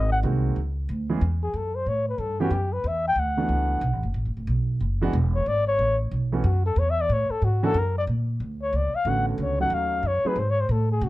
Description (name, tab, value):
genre	jazz, small-group swing and bop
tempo	184 BPM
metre	4/4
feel	swing 64% on 8ths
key	A major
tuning	A4 = 440 Hz
part	breathy flugelhorn	melody	0.0-11.1 s	F#4 to G5	-25 LUFS	left 2 dB	none
part	upright bass	bass	0.0-11.1 s	D1 to C#3	-24 LUFS	equal	none
part	warm grand piano	accompaniment	0.2-10.4 s	D3 to G#4	-27 LUFS	right 3 dB	none
room	little or no reverb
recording	close, detailed microphones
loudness	-22 LUFS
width	side -17 dB against mid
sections	0.0-8.4 A section; 8.4-11.1 A section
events	flugelhorn solo 0.0-11.1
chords	0.0 G#7; 0.6 C#m; 1.9 A7(no3); 3.2 D69; 4.5 Bm; 5.1 E; 5.8 A69; 7.7 F#; 8.4 Bm9; 9.7 D#m7b5; 10.4 Ammaj7/G#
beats	0.23 | 0.56 0.88 1.21 1.54 | 1.86 2.19 2.52 2.84 | 3.17 3.50 3.82 4.15 | 4.47 4.80 5.13 5.46 | 5.78 6.11 6.44 6.76 | 7.09 7.42 7.74 8.07 | 8.40 8.73 9.05 9.38 | 9.71 10.04 10.36 10.69 | 11.02